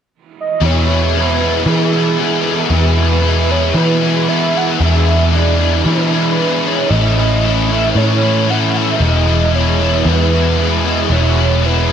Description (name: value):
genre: rock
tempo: 114 BPM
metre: 4/4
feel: straight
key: E major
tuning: A4 = 440 Hz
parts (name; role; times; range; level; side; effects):
- warm velvety synth lead; melody; 0.4-11.9 s; G#4 to F#5; -20 LUFS; right 3 dB; chorus, tape echo
- biting overdriven guitar; riff; 0.6-11.9 s; A2 to G#4; -17 LUFS; left 13 dB; ensemble chorus
- crunchy overdriven guitar; riff; 0.6-11.9 s; E2 to E4; -19 LUFS; right 10 dB; reverse reverb
- vintage muted picked electric bass; bass; 0.6-11.9 s; E1 to E3; -15 LUFS; equal; none
room: light reverb, digital ambience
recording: none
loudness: -11 LUFS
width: side -8 dB against mid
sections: 0.6-11.9 A section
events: none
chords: 0.0 N.C.; 0.6 E; 4.8 E7; 6.9 A; 9.0 E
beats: 0.10 | 0.62 1.15 1.67 2.20 | 2.72 3.24 3.77 4.29 | 4.82 5.34 5.87 6.39 | 6.92 7.44 7.97 8.49 | 9.02 9.54 10.07 10.60 | 11.12 11.65